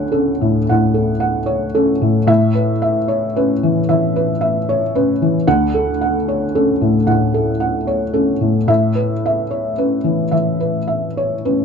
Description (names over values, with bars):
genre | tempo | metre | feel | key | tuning
neoclassical minimalist piano | 74 BPM | 4/4 | rubato | D major | A4 = 440 Hz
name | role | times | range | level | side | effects
felt-muted upright piano | solo | 0.0-11.6 s | D2 to F#5 | -14 LUFS | equal | none
room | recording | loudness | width
light reverb | dark, warm production | -14 LUFS | side -6 dB against mid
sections
0.0-11.6 A section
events
none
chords
0.0 Dmaj7; 2.3 Aadd9; 5.5 Dmaj7; 8.7 Aadd9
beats
0.68 1.48 | 2.28 3.08 3.88 4.67 | 5.45 6.25 7.06 7.86 | 8.68 9.53 10.36 11.19